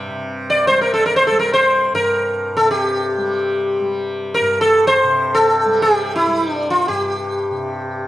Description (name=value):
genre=indian classical, Hindustani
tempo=free time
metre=none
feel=none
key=G raga bageshri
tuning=A4 = 441 Hz
part: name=tanpura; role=drone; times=0.0-8.1 s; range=G2 to G3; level=-26 LUFS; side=equal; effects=none
part: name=sitar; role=melody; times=0.5-8.1 s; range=E4 to D5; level=-15 LUFS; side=equal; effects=none
room=moderate recital hall reverb, RT60 1.4 s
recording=dark, warm production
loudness=-14 LUFS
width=side -15 dB against mid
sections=0.1-8.1 A section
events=none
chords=none